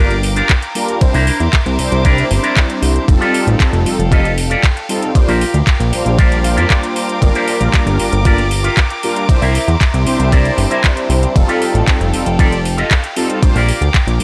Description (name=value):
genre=nu-disco, nu disco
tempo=116 BPM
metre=4/4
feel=straight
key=unclear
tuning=A4 = 439 Hz
part: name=mellow synth brass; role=accompaniment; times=0.0-14.2 s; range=G3 to C5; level=-22 LUFS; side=equal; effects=chorus, phaser, analog delay
part: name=clear studio violin section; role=sustained chords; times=0.0-14.2 s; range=A4 to D6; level=-26 LUFS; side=equal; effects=sidechain pumping
part: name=electric guitar with an envelope filter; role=riff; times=0.0-14.1 s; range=D4 to F5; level=-22 LUFS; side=equal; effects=lush chorus, analog delay
part: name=fat analog bass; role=bass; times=0.0-14.2 s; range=F1 to F2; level=-18 LUFS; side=equal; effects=none
part: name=house drum kit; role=drums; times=0.1-14.2 s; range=handclaps, hi-hat, ride cymbal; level=-24 LUFS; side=equal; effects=none
part: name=electronic kick drum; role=drums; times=0.5-14.0 s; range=none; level=-14 LUFS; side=equal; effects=overdrive
room=little or no reverb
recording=dry, gritty hardware recording, cassette tape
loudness=-14 LUFS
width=mono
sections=0.0-14.2 A section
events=clean electric guitar fill 6.2-7.2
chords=0.0 Gm7; 1.0 C9; 3.1 F9; 5.2 Bb6; 7.2 Gm7; 9.3 C9; 11.4 F9; 13.4 Bb6